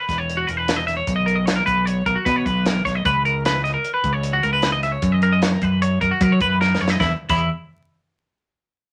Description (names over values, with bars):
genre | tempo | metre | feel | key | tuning
math rock and midwest emo | 152 BPM | 5/4 | straight | unclear | A4 = 441 Hz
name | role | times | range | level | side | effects
twelve-string electric guitar | arpeggios | 0.0-7.5 s | E4 to E5 | -23 LUFS | equal | none
growling fingered electric bass | bass | 0.1-7.5 s | E1 to F#3 | -23 LUFS | equal | overdrive
crisp fusion drum kit | drums | 0.1-7.4 s | crash cymbal, hi-hat, kick drum, snare drum | -28 LUFS | equal | none
room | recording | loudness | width
moderate studio reverb, RT60 0.6 s | vinyl crackle | -20 LUFS | mono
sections
0.0-7.0 A section; 7.0-8.9 B section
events
drum fill 6.6-7.0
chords
0.0 E5; 1.1 Bmaj9; 3.1 C#7(no3); 5.0 F#6; 7.0 N.C.